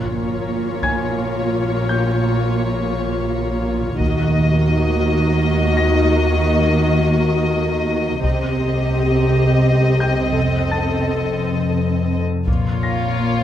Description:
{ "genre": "cinematic, suspense film score", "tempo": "85 BPM", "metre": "3/4", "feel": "straight", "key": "unclear", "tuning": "A4 = 441 Hz", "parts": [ { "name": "warm chamber violin section", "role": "melody", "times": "0.0-13.4 s", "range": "Db5 to Eb5", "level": "-25 LUFS", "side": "left 4 dB", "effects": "none" }, { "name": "dark studio viola section", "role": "accompaniment", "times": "0.0-13.4 s", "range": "Bb3 to A4", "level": "-22 LUFS", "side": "equal", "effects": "none" }, { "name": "dark chamber double bass section", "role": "bass", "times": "0.0-13.4 s", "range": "F1 to Eb2", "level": "-22 LUFS", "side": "right 1 dB", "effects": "none" }, { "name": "warm chamber cello section", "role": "bass", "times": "0.0-13.4 s", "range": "F2 to Eb3", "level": "-24 LUFS", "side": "right 2 dB", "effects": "none" }, { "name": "metallic inharmonic drone", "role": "drone", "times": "0.0-13.4 s", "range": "Bb1 to F2", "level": "-25 LUFS", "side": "left 1 dB", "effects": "chorus, built-in reverb" }, { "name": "bright baby grand piano", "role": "texture", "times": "0.0-13.4 s", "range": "G5 to Bb6", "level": "-29 LUFS", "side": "left 3 dB", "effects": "none" }, { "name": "solo taiko drums", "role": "drums", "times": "0.8-13.4 s", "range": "none", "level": "-25 LUFS", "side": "equal", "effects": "none" }, { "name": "warm chamber violin section", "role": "second line", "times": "12.5-13.4 s", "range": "F4", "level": "-25 LUFS", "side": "right 1 dB", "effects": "none" }, { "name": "marimba with medium mallets", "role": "riff", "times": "12.5-13.4 s", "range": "Bb2 to Bb3", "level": "-22 LUFS", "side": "left 4 dB", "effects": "none" } ], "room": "light reverb", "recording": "close, detailed microphones", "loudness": "-16 LUFS", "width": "side -11 dB against mid", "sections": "0.0-12.5 A section", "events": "none", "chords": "0.0 Bbm; 4.0 Ebm; 8.2 Cm; 10.4 F7; 12.5 Bbm", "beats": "0.47 1.18 | 1.89 2.59 3.30 | 4.00 4.71 5.42 | 6.12 6.83 7.53 | 8.24 8.95 9.65 | 10.36 11.06 11.77 | 12.47 13.18" }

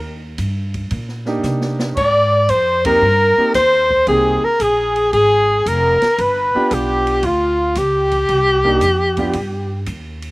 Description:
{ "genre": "jazz, small-group swing and bop", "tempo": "114 BPM", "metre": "4/4", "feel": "swing 68% on 8ths", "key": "C minor", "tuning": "A4 = 440 Hz", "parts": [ { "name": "breathy alto saxophone", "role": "melody", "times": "0.0-9.9 s", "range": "F4 to D5", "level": "-14 LUFS", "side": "left 1 dB", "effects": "none" }, { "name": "warm trumpet", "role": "second line", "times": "0.0-9.9 s", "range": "F4 to D5", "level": "-22 LUFS", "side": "right 2 dB", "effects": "slapback echo" }, { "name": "upright bass", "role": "bass", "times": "0.0-10.3 s", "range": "F1 to C3", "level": "-22 LUFS", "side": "equal", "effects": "none" }, { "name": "open jazz drum kit", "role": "drums", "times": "0.4-10.3 s", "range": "crash cymbal, hi-hat, kick drum, ride cymbal, snare drum", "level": "-31 LUFS", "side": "right 1 dB", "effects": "none" }, { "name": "warm concert grand piano", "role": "accompaniment", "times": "1.3-9.3 s", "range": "Bb3 to G4", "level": "-22 LUFS", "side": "right 2 dB", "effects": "none" } ], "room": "little or no reverb", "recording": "recorded outdoors, with no room sound", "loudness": "-13 LUFS", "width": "side -22 dB against mid", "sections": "0.0-10.3 A section", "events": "drum fill 1.4-2.0; band accent 2.8", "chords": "0.0 Cm9; 2.0 Abmaj7; 6.2 G7; 8.3 Cm9; 9.3 Eb", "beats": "0.39 0.91 1.44 | 1.97 2.50 3.02 3.55 | 4.08 4.60 5.13 5.66 | 6.18 6.71 7.24 7.77 | 8.29 8.82 9.35 9.88" }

